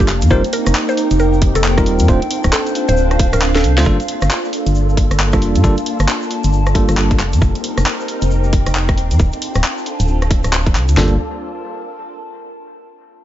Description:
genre	UK garage, two-step garage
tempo	135 BPM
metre	4/4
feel	swing 62% on 16ths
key	G minor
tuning	A4 = 438 Hz
part	mallet-like synth pluck	melody	0.0-3.8 s	G4 to C5	-23 LUFS	left 1 dB	chorus, dub echo
part	soft string machine	sustained chords	0.0-11.2 s	Bb3 to Bb4	-25 LUFS	equal	phaser, ensemble chorus, sidechain pumping
part	bell-like tine electric piano	stabs	0.0-7.2, 11.0-11.1 s	G3 to C5	-21 LUFS	right 1 dB	medium stereo tremolo, dub echo
part	organ-like FM bass	bass	0.0-11.2 s	D1 to G2	-15 LUFS	equal	none
part	garage drum kit	drums	0.0-11.1 s	kick drum, snare drum, toms	-16 LUFS	equal	overdrive, studio reverb
part	garage drum kit	drums	0.0-11.0 s	handclaps, hi-hat, rim click, snare drum	-20 LUFS	equal	overdrive, studio reverb
part	egg shaker	percussion	0.0-11.0 s	none	-35 LUFS	left 3 dB	none
part	warbly tape-like pad	texture	0.0-12.7 s	Bb3 to A5	-23 LUFS	equal	chorus, built-in reverb, sidechain pumping
room	digital ambience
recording	nothing above 7.7 kHz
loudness	-13 LUFS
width	side -12 dB against mid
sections	0.0-3.9 A section; 3.9-11.0 B section; 11.0-12.8 C section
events	drop 0.0-3.9; kick drops out 3.4-3.9; drum fill 3.5-3.9; fade-out on ambient pad 3.9-11.0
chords	0.1 F9sus4; 2.1 Dm7; 3.9 Gm9; 7.2 F9sus4; 9.2 Dm7; 11.0 Gm9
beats	| 0.31 0.75 1.19 1.64 | 2.08 2.53 2.97 3.42 | 3.86 4.31 4.75 5.19 | 5.64 6.08 6.53 6.97 | 7.42 7.86 8.31 8.75 | 9.19 9.64 10.08 10.53 | 10.97 11.42 11.86 12.31

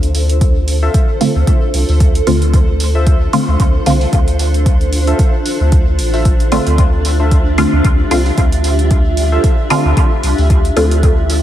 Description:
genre	dub techno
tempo	113 BPM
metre	4/4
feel	swing 56% on 16ths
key	D minor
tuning	A4 = 440 Hz
part	granular cloud pad	sustained chords	0.0-11.4 s	D4 to E5	-20 LUFS	equal	built-in reverb, lush chorus, sidechain pumping
part	soft dub sub bass	bass	0.0-11.4 s	A1 to D2	-14 LUFS	equal	tube saturation, sidechain pumping
part	electronic hi-hat	drums	0.0-11.4 s	none	-26 LUFS	right 2 dB	none
part	electronic kick drum	drums	0.4-11.2 s	none	-12 LUFS	equal	overdrive
part	warbly lo-fi synth keys	riff	0.8-10.1 s	F4 to E5	-25 LUFS	left 2 dB	chorus, sidechain pumping, dub echo
part	filtered dub chord stab	stabs	1.2-11.4 s	D3 to F4	-17 LUFS	equal	phaser, cassette tape, sidechain pumping, dub echo
room	light reverb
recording	none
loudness	-10 LUFS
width	side -12 dB against mid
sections	0.0-11.4 A section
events	none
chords	0.0 Dm7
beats	| 0.41 0.94 1.47 2.00 | 2.54 3.07 3.60 4.13 | 4.66 5.19 5.72 6.25 | 6.78 7.31 7.84 8.38 | 8.91 9.44 9.97 10.50 | 11.03

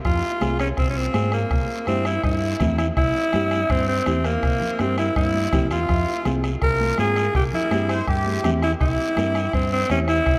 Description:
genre	latin, cumbia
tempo	164 BPM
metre	4/4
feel	straight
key	unclear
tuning	A4 = 436 Hz
part	guiro	percussion	0.0-10.4 s	none	-40 LUFS	equal	none
part	raspy alto saxophone	melody	0.1-10.4 s	Bb3 to Bb4	-25 LUFS	equal	none
part	fingered electric bass	bass	0.1-10.4 s	C2 to Ab2	-27 LUFS	equal	none
part	bombo	percussion	0.1-10.4 s	none	-29 LUFS	equal	none
part	nylon-string guitar	accompaniment	0.4-10.2 s	C4 to Bb4	-32 LUFS	equal	none
part	congas	percussion	0.4-10.1 s	none	-34 LUFS	equal	none
part	accordion	second line	7.9-8.5 s	G4 to C5	-33 LUFS	equal	light tremolo tuning
room	wet cathedral reverb, RT60 7.1 s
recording	in a vast, echoing space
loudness	-22 LUFS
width	mono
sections	0.1-10.4 A section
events	none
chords	0.1 Fm; 1.5 C7; 5.9 Fm; 7.3 C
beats	| 0.05 0.42 0.78 1.15 | 1.51 1.88 2.24 2.60 | 2.97 3.33 3.70 4.07 | 4.43 4.79 5.16 5.53 | 5.89 6.25 6.62 6.98 | 7.35 7.71 8.08 8.44 | 8.81 9.17 9.54 9.90 | 10.27

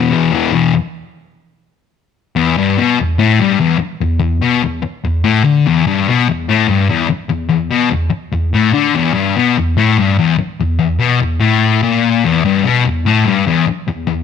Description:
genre	rock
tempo	146 BPM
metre	4/4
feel	straight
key	E minor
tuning	A4 = 437 Hz
part	fuzz guitar	solo	0.0-14.2 s	E2 to E3	-12 LUFS	left 5 dB	distortion
room	light reverb, digital ambience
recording	none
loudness	-12 LUFS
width	side -7 dB against mid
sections	0.7-2.4 A section; 2.4-14.2 B section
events	none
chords	0.0 E5; 0.7 N.C.; 2.4 Em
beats	0.33 | 0.74 1.15 1.55 1.96 | 2.37 2.78 3.19 3.60 | 4.01 4.42 4.83 5.25 | 5.66 6.07 6.48 6.89 | 7.30 7.71 8.13 8.54 | 8.95 9.36 9.77 10.19 | 10.60 11.01 11.42 11.83 | 12.25 12.66 13.07 13.48 | 13.90

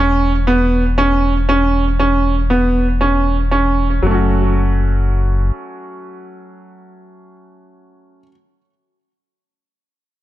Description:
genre	piano and strings electronica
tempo	118 BPM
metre	4/4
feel	straight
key	F# minor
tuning	A4 = 440 Hz
part	bright baby grand piano	riff	0.0-8.3 s	F#3 to F#4	-16 LUFS	right 2 dB	digital delay
part	round analog bass	bass	0.0-5.5 s	E1 to F#1	-16 LUFS	left 1 dB	none
room	light reverb, studio reverb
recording	dark, warm production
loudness	-13 LUFS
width	side -14 dB against mid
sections	0.0-4.0 A section; 4.0-8.1 B section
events	filter sweep on analog synth bass 0.0-4.0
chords	0.0 E5; 4.0 F#m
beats	0.47 0.97 1.48 | 1.99 2.50 3.01 3.52 | 4.03 4.53 5.04 5.55 | 6.06 6.57 7.08 7.58

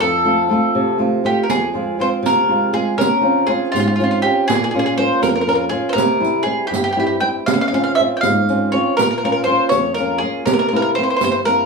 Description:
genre	italian folk, Italian serenade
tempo	80 BPM (dotted quarters)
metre	6/8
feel	straight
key	F harmonic minor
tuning	A4 = 441 Hz
part	bowl-back mandolin	melody	0.0-11.7 s	F4 to G5	-17 LUFS	equal	none
part	flamenco guitar	accompaniment	0.0-11.7 s	F2 to F4	-18 LUFS	equal	none
part	riq	percussion	1.5-11.6 s	none	-21 LUFS	right 6 dB	none
room	wet studio ambience, RT60 0.5 s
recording	band playing live in one room, studio reverb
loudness	-15 LUFS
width	side -4 dB against mid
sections	0.0-1.5 A section; 1.5-11.7 B section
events	none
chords	0.0 F; 1.5 Fm; 3.0 Dbmaj7; 4.5 Bbm; 6.0 C; 7.5 Dbmaj7; 9.0 Bbm; 10.5 C7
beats	0.75 | 1.50 2.26 | 3.00 3.75 | 4.49 5.23 | 5.97 6.72 | 7.47 8.23 | 8.98 9.72 | 10.46 11.20

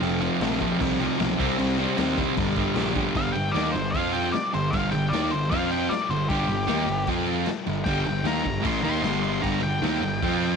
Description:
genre	garage rock duo or trio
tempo	153 BPM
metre	4/4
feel	straight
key	G minor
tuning	A4 = 441 Hz
part	fuzz guitar	riff	0.0-10.6 s	F2 to F4	-24 LUFS	right 1 dB	distortion
part	fuzz picked electric bass	bass	0.0-10.6 s	F1 to F2	-31 LUFS	right 1 dB	overdrive, tube saturation
part	raw garage drum kit	drums	0.0-10.5 s	crash cymbal, kick drum, snare drum	-31 LUFS	left 4 dB	none
part	octave-fuzz lead guitar	melody	3.2-10.6 s	G4 to C6	-29 LUFS	left 2 dB	distortion, tape echo
room	light reverb, studio reverb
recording	1960s-style stereo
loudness	-22 LUFS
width	side -6 dB against mid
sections	0.0-3.2 A section; 3.2-10.6 B section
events	lead electric guitar solo 3.2-10.6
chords	0.0 F5; 1.4 Cm; 2.4 Gm; 3.9 F5; 4.3 Gm; 5.5 F5; 5.9 Gm; 7.1 F5; 7.5 Gm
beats	| 0.02 0.41 0.80 1.20 | 1.59 1.98 2.37 2.77 | 3.16 3.55 3.94 4.34 | 4.73 5.12 5.52 5.91 | 6.30 6.70 7.09 7.48 | 7.88 8.27 8.66 9.05 | 9.44 9.84 10.23

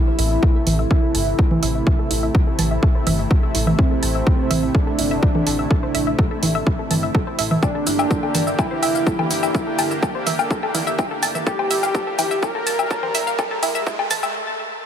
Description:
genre	melodic techno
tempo	125 BPM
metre	4/4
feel	straight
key	A phrygian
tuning	A4 = 439 Hz
part	fat analog lead	melody	0.0-13.8 s	C4 to Bb4	-24 LUFS	right 1 dB	phaser, sidechain pumping, tape echo
part	lush unison pad	sustained chords	0.0-14.3 s	C3 to G4	-27 LUFS	left 1 dB	chorus, sidechain pumping
part	analog pluck	arpeggios	0.0-14.3 s	E4 to A5	-27 LUFS	equal	chorus, sidechain pumping, ping-pong delay
part	round analog bass	bass	0.2-14.3 s	F1 to A1	-25 LUFS	equal	sidechain pumping
part	electronic hi-hat, congas, shaker and woodblock	drums	0.2-14.3 s	none	-23 LUFS	equal	overdrive, sidechain pumping on perc, sidechain pumping on hats
part	electronic kick drum	drums	0.4-14.0 s	none	-19 LUFS	equal	overdrive
part	riser	sound effects	10.7-14.3 s	none	-34 LUFS	right 1 dB	none
room	light reverb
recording	high-pass filter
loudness	-17 LUFS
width	side -9 dB against mid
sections	0.0-14.9 A section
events	build-up 0.0-14.9; filter sweep on synth arpeggio sound 0.0-14.9; filter sweep 0.0-14.9; riser 10.7-14.3; break 14.3-14.9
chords	0.0 Am; 7.6 Gm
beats	0.43 0.91 1.39 | 1.87 2.35 2.83 3.31 | 3.79 4.27 4.75 5.23 | 5.71 6.19 6.67 7.15 | 7.63 8.11 8.59 9.07 | 9.55 10.03 10.51 10.99 | 11.47 11.95 12.43 12.91 | 13.39 13.87 14.35

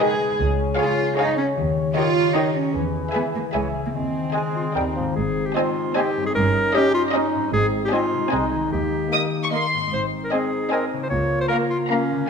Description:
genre	cinematic, playful, whimsical film cue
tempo	152 BPM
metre	3/4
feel	straight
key	Ab major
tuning	A4 = 441 Hz
part	warm studio violin section	melody	0.0-12.2 s	D#5 to Eb6	-27 LUFS	left 3 dB	none
part	clear clarinet	second line	0.0-12.3 s	Db4 to Db5	-24 LUFS	left 1 dB	none
part	concert flute	second line	0.0-12.0 s	Eb5 to Ab5	-33 LUFS	left 1 dB	none
part	warm studio violin section	second line	0.0-12.2 s	Db5 to F5	-33 LUFS	left 2 dB	none
part	clear bassoon	accompaniment	0.0-12.0 s	Db3 to Db4	-31 LUFS	right 3 dB	none
part	dark studio viola section	accompaniment	0.0-12.2 s	Bb3 to Bb4	-30 LUFS	right 2 dB	none
part	mellow French horn section	sustained chords	0.0-12.3 s	Ab3 to Fb5	-28 LUFS	left 1 dB	none
part	concert harp	arpeggios	0.0-12.3 s	G2 to E5	-29 LUFS	left 9 dB	none
part	dark chamber cello section	bass	0.0-11.4 s	Db2 to G#4	-26 LUFS	right 4 dB	none
part	warm studio double bass section	bass	0.4-11.4 s	G1 to E2	-28 LUFS	right 3 dB	none
room	wet scoring stage reverb, RT60 1.6 s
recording	faint mains hum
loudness	-19 LUFS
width	side -6 dB against mid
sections	0.0-5.2 A section; 5.2-12.3 B section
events	none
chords	0.4 Db; 1.6 Eb7; 2.7 E; 3.5 Dbm; 3.9 Ab/Eb; 4.8 Eb; 5.2 Ab; 6.3 Eb7/G; 7.5 Ab; 8.3 Ab/C; 8.7 Eb; 9.9 Ab; 11.1 Bbm/Db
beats	0.00 | 0.39 0.79 1.18 | 1.57 1.96 2.36 | 2.75 3.14 3.54 | 3.94 4.35 4.75 | 5.16 5.56 5.96 | 6.35 6.74 7.13 | 7.53 7.92 8.31 | 8.71 9.11 9.51 | 9.92 10.31 10.71 | 11.10 11.50 11.89 | 12.29

